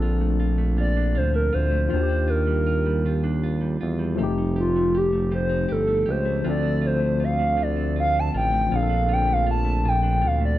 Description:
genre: slow six-eight R&B.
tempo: 53 BPM (dotted quarters).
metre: 6/8.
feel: straight.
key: Bb major.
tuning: A4 = 440 Hz.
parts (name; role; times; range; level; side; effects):
clean electric guitar; second line; 0.0-10.6 s; Bb2 to A4; -31 LUFS; right 5 dB; none.
barky tine electric piano; accompaniment; 0.0-10.6 s; Bb2 to A4; -28 LUFS; left 5 dB; auto-pan.
smooth synth bass; bass; 0.0-10.6 s; F1 to E2; -24 LUFS; equal; none.
hollow clarinet-like synth lead; melody; 0.8-10.6 s; F4 to A5; -24 LUFS; equal; chorus, slapback echo, plate reverb.
room: light reverb.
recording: none.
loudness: -20 LUFS.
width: side -14 dB against mid.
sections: 0.0-10.6 A section.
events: soft synth lead solo 0.0-10.6.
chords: 0.0 Bbmaj7; 1.9 Ebmaj9; 4.2 F9; 6.4 Dm7; 8.7 Bbmaj7.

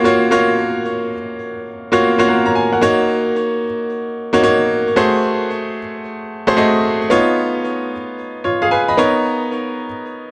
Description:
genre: R&B.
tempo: 112 BPM.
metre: 4/4.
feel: swing 64% on 16ths.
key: unclear.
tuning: A4 = 440 Hz.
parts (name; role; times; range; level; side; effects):
bright baby grand piano; solo; 0.0-10.3 s; A3 to Cb6; -17 LUFS; equal; digital delay.
room: moderate plate reverb, RT60 3.3 s.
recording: dark, warm production.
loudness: -17 LUFS.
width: mono.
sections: 0.0-2.8 A section; 2.8-10.3 B section.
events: none.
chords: 0.0 Gbmaj7; 2.8 Gb6; 5.0 Ab7b9; 7.1 Db9; 9.0 Bmaj9.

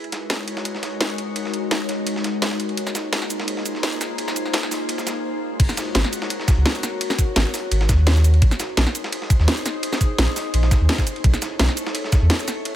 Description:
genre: liquid drum and bass.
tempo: 170 BPM.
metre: 4/4.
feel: straight.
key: unclear.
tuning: A4 = 440 Hz.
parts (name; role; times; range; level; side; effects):
glassy FM pad; sustained chords; 0.0-12.8 s; G#3 to C#5; -27 LUFS; left 2 dB; ensemble chorus, built-in reverb.
dusty soul sampler-style drum kit; drums; 0.0-12.7 s; ride cymbal, snare drum; -29 LUFS; right 1 dB; high-pass filter on cymbals, studio reverb, high-pass filter on snare.
drum and bass drum kit; drums; 0.1-12.7 s; crash cymbal, hi-hat, shaker, snare drum; -25 LUFS; equal; high-pass filter on hats, studio reverb, high-pass filter on snare, high-pass filter on perc, high-pass filter on cymbals.
sub bass with octave; bass; 5.6-12.3 s; G#1 to E2; -17 LUFS; equal; tube saturation.
electronic kick drum; drums; 5.6-12.2 s; none; -17 LUFS; equal; studio reverb.
room: little or no reverb.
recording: none.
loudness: -18 LUFS.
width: side -12 dB against mid.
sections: 0.0-5.6 A section; 5.6-12.8 B section.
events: build-up 0.0-5.6; break 5.2-5.6; drop 5.6-12.8.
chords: 0.0 G#9sus4; 2.8 A#9sus4; 5.4 G#9sus4; 8.4 A#9sus4; 11.1 B9sus4.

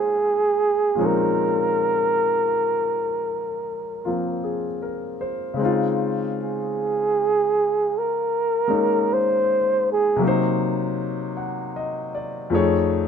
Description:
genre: jazz.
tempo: 52 BPM.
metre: 4/4.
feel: swing 68% on 8ths.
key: Bb minor, Db major from 5.6 s.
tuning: A4 = 441 Hz.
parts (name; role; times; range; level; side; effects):
breathy flugelhorn; melody; 0.0-10.2 s; Ab4 to C5; -20 LUFS; right 2 dB; none.
clear concert grand piano; accompaniment; 0.0-13.1 s; F2 to Gb5; -24 LUFS; left 3 dB; none.
room: light reverb.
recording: minimal, uncompressed stereo recording.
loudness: -20 LUFS.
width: side -7 dB against mid.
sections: 0.0-5.6 A section; 5.6-13.1 B section.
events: flugelhorn solo 5.6-13.1.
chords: 0.0 Bbm11; 5.6 Dbmaj9; 10.2 Cm7b5; 12.5 F7alt.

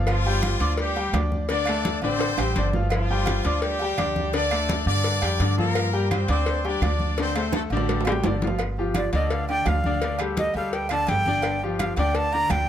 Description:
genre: latin, salsa.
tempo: 169 BPM.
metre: 4/4.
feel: straight.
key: unclear.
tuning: A4 = 439 Hz.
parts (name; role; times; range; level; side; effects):
bright grand piano; accompaniment; 0.0-12.6 s; D3 to D6; -27 LUFS; left 3 dB; none.
upright bass; bass; 0.0-12.7 s; G1 to G2; -26 LUFS; right 1 dB; none.
bright horn section; melody; 0.1-8.4 s; F3 to D5; -27 LUFS; left 1 dB; none.
agogo bells and timbales; percussion; 0.1-12.7 s; none; -33 LUFS; right 7 dB; none.
claves; percussion; 0.1-12.7 s; none; -37 LUFS; right 10 dB; none.
congas; percussion; 0.1-12.7 s; none; -31 LUFS; left 1 dB; none.
cowbell and bongos; percussion; 0.1-12.7 s; none; -32 LUFS; left 4 dB; none.
breathy bright jazz flute; melody; 9.0-12.7 s; D5 to Bb5; -25 LUFS; right 2 dB; none.
room: light reverb.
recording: none.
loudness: -21 LUFS.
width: side -10 dB against mid.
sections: 0.0-8.6 A section; 8.6-12.7 B section.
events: drum fill 2.2-2.9, 7.5-8.6; flute solo 8.6-12.7.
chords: 0.1 G5; 1.5 D7sus4; 2.9 G5; 4.3 Dsus4; 5.8 Gm7; 7.2 D7sus4; 8.6 G5; 10.0 Dsus4; 11.4 G5.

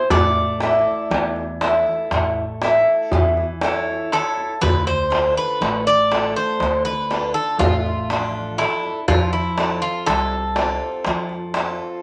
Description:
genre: greek folk, Greek bouzouki band.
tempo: 121 BPM (eighths).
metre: 9/8.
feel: straight.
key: D minor.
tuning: A4 = 440 Hz.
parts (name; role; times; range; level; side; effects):
Greek bouzouki; melody; 0.0-12.0 s; E4 to D5; -23 LUFS; equal; none.
picked steel-string acoustic guitar; accompaniment; 0.1-12.0 s; C3 to E5; -25 LUFS; equal; none.
upright bass; bass; 0.1-11.7 s; A1 to F2; -32 LUFS; equal; none.
darbuka; percussion; 0.1-11.8 s; none; -24 LUFS; equal; none.
room: wet studio reverb, RT60 0.6 s.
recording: none.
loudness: -20 LUFS.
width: mono.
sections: 0.0-4.6 A section; 4.6-12.0 B section.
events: none.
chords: 0.1 A; 4.6 Dm; 9.1 F.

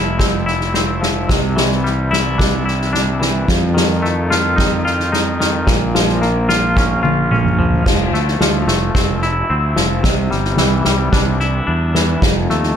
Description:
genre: post-rock.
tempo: 110 BPM.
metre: 4/4.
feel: straight.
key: F major.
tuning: A4 = 439 Hz.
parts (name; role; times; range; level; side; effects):
twangy electric guitar; arpeggios; 0.0-12.8 s; F2 to F4; -19 LUFS; left 2 dB; tremolo, slapback echo.
fuzz fingered electric bass; bass; 0.0-12.7 s; F1 to F2; -19 LUFS; equal; overdrive.
soft-mallet drum kit; drums; 0.2-12.7 s; crash cymbal, kick drum, snare drum, toms; -17 LUFS; equal; none.
room: light reverb, small room ambience.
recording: none.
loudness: -13 LUFS.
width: side -8 dB against mid.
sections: 0.0-7.9 A section; 7.9-12.8 B section.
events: drum fill 6.8-7.9.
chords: 0.0 Fmaj7; 1.3 Cadd9; 3.5 F7; 5.7 Bbm; 7.9 Fmaj7; 10.0 Cadd9; 12.2 F7.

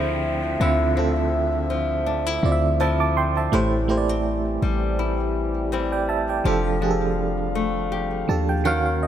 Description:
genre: R&B.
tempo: 82 BPM.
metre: 4/4.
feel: swing 54% on 16ths.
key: D minor.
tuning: A4 = 440 Hz.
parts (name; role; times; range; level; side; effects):
FM electric piano with tremolo; accompaniment; 0.0-9.1 s; D3 to D6; -24 LUFS; right 5 dB; none.
mellow French horn section; sustained chords; 0.0-9.1 s; D3 to F5; -28 LUFS; equal; none.
flamenco guitar; arpeggios; 0.0-9.1 s; A2 to G4; -27 LUFS; left 6 dB; ping-pong delay.
warm 808-style bass; bass; 0.0-9.1 s; F1 to Eb2; -26 LUFS; left 1 dB; none.
downlifter; sound effects; 0.0-3.5 s; none; -37 LUFS; left 2 dB; none.
room: light reverb, studio reverb.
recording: none.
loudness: -20 LUFS.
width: side -10 dB against mid.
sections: 0.0-9.1 A section.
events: FM electric piano fill 7.9-9.1.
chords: 0.0 Dm9; 3.5 Am7; 6.5 F69.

